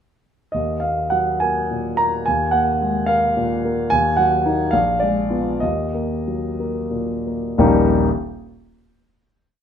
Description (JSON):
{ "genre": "classical, romantic character piece for solo piano", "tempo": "58-75 BPM (dotted quarters)", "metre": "6/8", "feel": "rubato", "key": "Eb minor", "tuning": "A4 = 441 Hz", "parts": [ { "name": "warm concert grand piano", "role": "solo", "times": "0.5-8.1 s", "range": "Eb1 to Bb5", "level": "-17 LUFS", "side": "equal", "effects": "none" } ], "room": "light reverb", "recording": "minimal, uncompressed stereo recording, lossy compression artefacts", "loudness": "-17 LUFS", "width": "side -8 dB against mid", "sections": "0.5-7.6 A section; 7.6-9.5 final chord", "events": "slowing down 3.1-7.6", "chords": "0.5 Ebm; 4.7 Bb7b9; 5.6 Ebm; 7.6 Eb" }